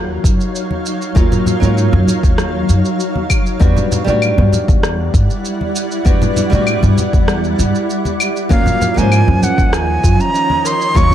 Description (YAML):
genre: sunset chillout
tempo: 98 BPM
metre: 4/4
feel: straight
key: unclear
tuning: A4 = 441 Hz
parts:
  - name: flamenco guitar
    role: accompaniment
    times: 0.0-11.1 s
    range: F3 to F#4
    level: -20 LUFS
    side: moving between left 4 dB and right 3 dB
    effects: auto-pan, ping-pong delay
  - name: shimmering ambient pad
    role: sustained chords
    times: 0.0-11.1 s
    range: Eb3 to F#5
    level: -21 LUFS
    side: equal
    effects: chorus, built-in reverb
  - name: upright bass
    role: bass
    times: 0.0-11.1 s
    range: Eb2 to A2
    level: -14 LUFS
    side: equal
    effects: none
  - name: electronic kick drum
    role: drums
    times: 0.2-11.1 s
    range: none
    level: -15 LUFS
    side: equal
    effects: none
  - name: electronic shaker, rim click and claves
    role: drums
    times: 0.3-11.1 s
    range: none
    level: -23 LUFS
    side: equal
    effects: none
  - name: congas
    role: percussion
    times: 0.7-11.1 s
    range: none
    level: -20 LUFS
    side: left 1 dB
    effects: none
  - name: breathy bright jazz flute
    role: melody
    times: 8.5-11.1 s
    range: F5 to Db6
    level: -16 LUFS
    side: right 1 dB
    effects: ping-pong delay
  - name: soft round pluck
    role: arpeggios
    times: 8.5-11.1 s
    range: Db4 to Bb4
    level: -23 LUFS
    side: right 4 dB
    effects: chorus, ping-pong delay
room: small room reverb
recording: dark, warm production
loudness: -12 LUFS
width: side -11 dB against mid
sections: 0.0-11.1 A section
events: break 7.9-8.5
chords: 0.0 Ebm9; 3.6 Em9; 8.5 Ebm9